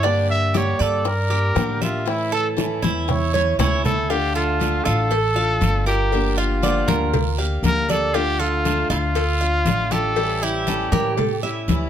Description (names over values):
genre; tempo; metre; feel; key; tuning
latin, Cuban son and guajira; 118 BPM; 4/4; straight; D minor from 4.1 s; A4 = 438 Hz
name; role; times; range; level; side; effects
breathy trumpet; melody; 0.0-11.4 s; E4 to E5; -23 LUFS; equal; plate reverb
picked acoustic archtop guitar; accompaniment; 0.0-11.9 s; D3 to G4; -27 LUFS; left 5 dB; none
Cuban tres; arpeggios; 0.0-11.9 s; D4 to F5; -25 LUFS; right 5 dB; none
upright bass; bass; 0.0-11.9 s; G1 to A2; -23 LUFS; equal; none
bongos and cowbell; percussion; 0.0-11.9 s; none; -28 LUFS; left 8 dB; none
congas; percussion; 0.0-11.9 s; none; -26 LUFS; left 2 dB; none
guiro; percussion; 0.0-11.9 s; none; -35 LUFS; right 6 dB; none
nylon-string guitar; second line; 10.9-11.9 s; E4 to Bb4; -25 LUFS; right 4 dB; none
room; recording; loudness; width
light reverb; close, detailed microphones; -18 LUFS; side -9 dB against mid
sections
0.0-4.1 A section; 4.1-11.9 B section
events
trumpet solo 0.0-4.1; drum fill 3.3-4.1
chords
0.0 Gm; 2.1 A; 4.1 Dm; 6.1 Gm7; 8.1 Dm; 10.2 A7